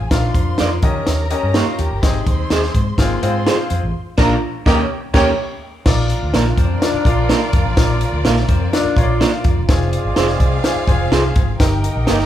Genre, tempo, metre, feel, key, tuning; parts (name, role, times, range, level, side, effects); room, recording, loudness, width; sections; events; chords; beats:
uptempo 1960s-style soul; 125 BPM; 4/4; straight; Bb mixolydian; A4 = 440 Hz
warm studio violin section; second line; 0.0-12.3 s; Bb3 to C6; -27 LUFS; equal
vintage muted fingered electric bass; bass; 0.0-12.3 s; E1 to Eb3; -20 LUFS; equal
bright upright piano; accompaniment; 0.1-12.3 s; C4 to F5; -23 LUFS; left 2 dB
compact cocktail drum kit; drums; 0.1-12.3 s; crash cymbal, hi-hat, kick drum, snare drum; -17 LUFS; equal
electric guitar through a small old amp; stabs; 0.6-12.2 s; Bb3 to D5; -20 LUFS; right 3 dB
electric guitar through a small old amp; riff; 1.3-12.3 s; Bb3 to G4; -25 LUFS; left 3 dB
mellow horn section; second line; 4.7-12.3 s; F3 to Eb5; -28 LUFS; right 4 dB
moderate large studio reverb, RT60 1.2 s; band playing live in one room; -14 LUFS; side -11 dB against mid
0.0-5.9 A section; 5.9-12.3 B section
band accent 3.9-5.9
0.1 Bb; 0.8 Eb7; 2.0 Ab; 3.0 Fm/Ab; 3.9 Bb; 4.7 Eb7; 5.9 Bb; 9.7 Fm; 11.6 Eb/G
| 0.11 0.59 1.07 1.55 | 2.03 2.51 2.99 3.46 | 3.94 4.42 4.90 5.38 | 5.86 6.34 6.82 7.29 | 7.77 8.25 8.73 9.21 | 9.69 10.16 10.64 11.12 | 11.60 12.08